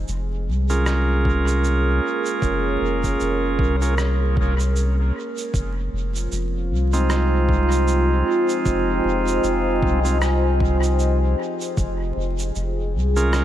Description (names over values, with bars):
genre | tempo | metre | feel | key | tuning
ambient dub | 77 BPM | 4/4 | swing 58% on 16ths | F minor | A4 = 440 Hz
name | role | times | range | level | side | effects
deep dark ambient pad | sustained chords | 0.0-13.4 s | F4 to Ab5 | -25 LUFS | equal | chorus, built-in reverb
soft dub sub bass | bass | 0.0-13.4 s | F1 to C2 | -21 LUFS | equal | none
electronic shaker and rim click | drums | 0.1-13.4 s | none | -32 LUFS | right 1 dB | dub echo
bright tonewheel organ | stabs | 0.7-13.4 s | Ab3 to Bb4 | -24 LUFS | right 3 dB | vintage 12-bit sampler grit, dub echo
electronic kick drum | drums | 1.3-12.0 s | none | -24 LUFS | equal | none
room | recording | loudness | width
light reverb | vinyl crackle | -18 LUFS | side -12 dB against mid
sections
0.0-5.5 A section; 5.5-13.4 B section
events
none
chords
0.0 Bbm7/F; 5.5 Fm7; 11.8 Bbm7/F